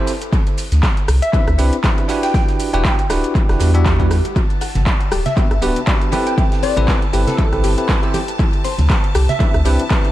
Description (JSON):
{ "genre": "deep house", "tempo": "119 BPM", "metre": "4/4", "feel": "swing 56% on 16ths", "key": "unclear", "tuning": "A4 = 441 Hz", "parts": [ { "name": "bell-like tine electric piano", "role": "stabs", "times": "0.0-10.1 s", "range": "B3 to E5", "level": "-22 LUFS", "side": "equal", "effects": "auto-pan, sidechain pumping, analog delay" }, { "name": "deep house drum kit", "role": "drums", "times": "0.1-10.1 s", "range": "handclaps, hi-hat, rim click, shaker", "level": "-24 LUFS", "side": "equal", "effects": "overdrive, small room reverb, analog delay" }, { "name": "huge arena drum kit", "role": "drums", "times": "0.1-10.1 s", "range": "ride cymbal, snare drum", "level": "-34 LUFS", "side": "left 1 dB", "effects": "high-pass filter on cymbals, small room reverb, high-pass filter on snare, high-pass filter on room" }, { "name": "electronic kick drum", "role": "drums", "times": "0.3-10.0 s", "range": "none", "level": "-17 LUFS", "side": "equal", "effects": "overdrive, small room reverb" }, { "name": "warm sub bass", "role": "bass", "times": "0.7-9.8 s", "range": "D1 to E2", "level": "-15 LUFS", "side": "equal", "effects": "sidechain pumping" }, { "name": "glassy wavetable pluck", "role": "melody", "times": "1.2-9.4 s", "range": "A4 to G5", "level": "-24 LUFS", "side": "right 1 dB", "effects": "chorus, dub echo" }, { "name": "swell", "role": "sound effects", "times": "3.5-4.4 s", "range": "none", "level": "-26 LUFS", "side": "right 6 dB", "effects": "none" }, { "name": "analog pluck", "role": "arpeggios", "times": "4.4-10.0 s", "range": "E4 to G5", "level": "-27 LUFS", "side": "left 4 dB", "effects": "chorus, sidechain pumping, analog delay" }, { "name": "string machine, violins", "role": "texture", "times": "4.4-10.1 s", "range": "A5", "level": "-31 LUFS", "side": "equal", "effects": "ensemble chorus, sidechain pumping" }, { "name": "congas", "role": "percussion", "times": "4.8-9.5 s", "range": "none", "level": "-26 LUFS", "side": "right 2 dB", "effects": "sidechain pumping on perc, analog delay" } ], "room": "little or no reverb", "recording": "echo-heavy mix", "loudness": "-14 LUFS", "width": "side -14 dB against mid", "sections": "0.0-10.1 A section", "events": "swell 3.5-4.4", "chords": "0.3 D13sus4; 2.3 Em9; 4.4 Gmaj7; 6.1 Am9; 8.4 D13sus4" }